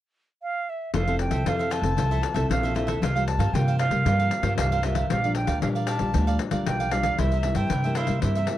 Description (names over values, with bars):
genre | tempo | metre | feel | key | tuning
samba and choro | 115 BPM | 4/4 | straight | F major | A4 = 440 Hz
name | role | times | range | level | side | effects
silver concert flute | melody | 0.4-8.6 s | E5 to A5 | -28 LUFS | right 2 dB | none
cavaquinho | accompaniment | 0.9-8.5 s | E4 to F5 | -32 LUFS | right 6 dB | none
nylon-string guitar | accompaniment | 0.9-8.6 s | G2 to A4 | -29 LUFS | left 2 dB | none
upright bass | bass | 0.9-8.4 s | F1 to C3 | -26 LUFS | right 1 dB | none
pandeiro | percussion | 0.9-8.6 s | none | -30 LUFS | left 8 dB | none
room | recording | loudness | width
light reverb | dry, close 1970s-style studio recording | -22 LUFS | side -13 dB against mid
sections
0.9-8.6 A section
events
none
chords
0.0 N.C.; 0.9 Fmaj7; 3.0 C7sus4; 5.1 Gm7/Bb; 7.2 C7